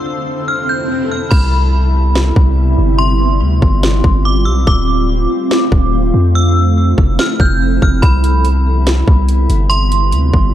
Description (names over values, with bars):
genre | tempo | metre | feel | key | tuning
hip hop, atmospheric cloud-rap | 143 BPM | 4/4 | half-time | C major | A4 = 440 Hz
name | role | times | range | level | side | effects
metallic FM bell | melody | 0.0-10.5 s | B5 to G6 | -20 LUFS | equal | chorus, phaser, low-pass filter, tape echo
shimmering ambient pad | sustained chords | 0.0-10.5 s | F2 to A4 | -18 LUFS | right 1 dB | chorus, built-in reverb, sidechain pumping, low-pass filter
swell | sound effects | 0.0-1.3 s | none | -22 LUFS | left 1 dB | none
long sustained 808-style bass | bass | 1.3-10.5 s | D1 to F2 | -12 LUFS | equal | none
trap drum kit | drums | 1.3-10.4 s | crash cymbal, hi-hat, kick drum, snare drum | -14 LUFS | equal | none
room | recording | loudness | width
little or no reverb | dark, warm production | -10 LUFS | side -12 dB against mid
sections
0.0-1.3 A section; 1.3-10.5 B section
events
swell 0.0-1.3; filter sweep 0.0-1.3; hi-hats muted 1.3-8.0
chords
0.0 Fmaj7; 1.3 Cmaj7; 3.0 G7sus4; 4.7 Dm7; 6.3 Fmaj7; 8.0 Cmaj7; 9.7 G7sus4